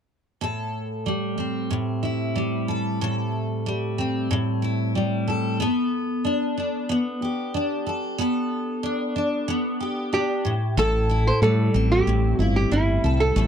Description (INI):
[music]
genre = pop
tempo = 93 BPM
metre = 4/4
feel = straight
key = unclear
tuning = A4 = 440 Hz
[part]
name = picked steel-string acoustic guitar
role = accompaniment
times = 0.4-13.5 s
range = A2 to A4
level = -23 LUFS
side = equal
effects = double-tracked left and right
[part]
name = nylon-string guitar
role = melody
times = 10.1-13.5 s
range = E4 to C5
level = -23 LUFS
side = right 2 dB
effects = none
[part]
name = woody fretless electric bass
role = bass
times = 10.8-13.5 s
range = G1 to A2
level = -21 LUFS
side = equal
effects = none
[sound]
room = little or no reverb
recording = dry, close 1970s-style studio recording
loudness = -21 LUFS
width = side -8 dB against mid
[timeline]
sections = 0.4-10.8 A section; 10.8-13.5 B section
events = none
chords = 0.4 Am7; 5.6 Gadd9/B; 10.5 N.C.; 10.8 Am7